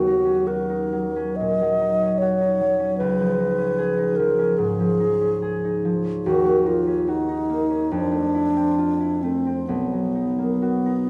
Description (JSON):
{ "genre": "classical, impressionist duo for alto flute and harp", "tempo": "63-77 BPM", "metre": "4/4", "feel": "rubato", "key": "unclear", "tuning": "A4 = 444 Hz", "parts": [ { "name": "mellow alto flute", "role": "melody", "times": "0.0-11.1 s", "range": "B3 to D#5", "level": "-24 LUFS", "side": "equal", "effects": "none" }, { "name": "concert harp", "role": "accompaniment", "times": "0.0-11.1 s", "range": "B1 to G#4", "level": "-26 LUFS", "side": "equal", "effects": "none" } ], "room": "wet recital hall reverb, RT60 1.4 s", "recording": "none", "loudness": "-22 LUFS", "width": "mono", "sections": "0.0-11.1 A section", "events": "none", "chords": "0.0 D#m7; 3.0 C#9; 6.2 D#m7; 7.9 Fmaj7; 9.7 Bmaj7", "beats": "0.47 1.37 2.19 | 2.98 3.77 4.58 5.41 | 6.25 7.08 7.91 8.78 | 9.68 10.62" }